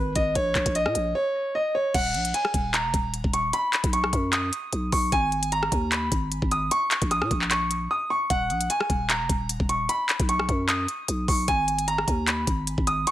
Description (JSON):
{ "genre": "hip hop, trap", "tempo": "151 BPM", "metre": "4/4", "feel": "half-time", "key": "unclear", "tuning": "A4 = 436 Hz", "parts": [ { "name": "clear concert grand piano", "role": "melody", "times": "0.0-13.1 s", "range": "Cb5 to D#6", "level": "-25 LUFS", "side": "right 1 dB", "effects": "digital delay" }, { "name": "growling 808-style bass", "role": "bass", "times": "0.0-13.1 s", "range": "Eb1 to Bb2", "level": "-29 LUFS", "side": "equal", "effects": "none" }, { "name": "trap drum kit", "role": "drums", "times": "0.2-13.1 s", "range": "crash cymbal, handclaps, hi-hat, kick drum, rim click", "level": "-26 LUFS", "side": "equal", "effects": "none" } ], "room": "light reverb, digital ambience", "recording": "none", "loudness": "-22 LUFS", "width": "side -13 dB against mid", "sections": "0.0-1.9 A section; 1.9-13.1 B section", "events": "silent gap 7.9-8.3", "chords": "0.4 Bbm; 1.9 Ebm; 3.5 B; 5.1 Abm; 6.7 Bbm; 8.3 Ebm; 9.9 B; 11.5 Abm" }